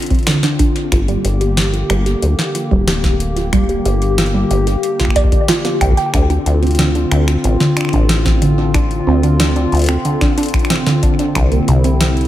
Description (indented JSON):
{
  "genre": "IDM",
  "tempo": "92 BPM",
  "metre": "4/4",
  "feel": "straight",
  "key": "D minor",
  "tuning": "A4 = 439 Hz",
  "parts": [
    { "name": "hollow soft pad", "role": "sustained chords", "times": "0.0-12.3 s", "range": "D3 to G4", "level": "-20 LUFS", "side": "left 2 dB", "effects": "chorus, shimmer reverb" },
    { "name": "booming analog drum machine", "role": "drums", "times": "0.0-12.3 s", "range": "finger snaps, hi-hat, snare drum", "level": "-20 LUFS", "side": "equal", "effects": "tape echo" },
    { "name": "warbly dusty pluck", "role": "arpeggios", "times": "0.1-12.2 s", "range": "C3 to G5", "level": "-18 LUFS", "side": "right 2 dB", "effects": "chorus, cassette tape, ping-pong delay, shimmer reverb" },
    { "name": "electronic kick drum", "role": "drums", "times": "0.1-11.5 s", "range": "none", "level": "-16 LUFS", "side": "equal", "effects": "none" },
    { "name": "deep acid bass", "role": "bass", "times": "0.9-12.3 s", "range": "D1 to D2", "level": "-16 LUFS", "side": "equal", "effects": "none" }
  ],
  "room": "light reverb",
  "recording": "none",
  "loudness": "-12 LUFS",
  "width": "side -13 dB against mid",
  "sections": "0.0-12.3 A section",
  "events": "none",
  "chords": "0.0 Dm7; 0.9 Gm; 6.1 Dm7; 11.4 Cadd9"
}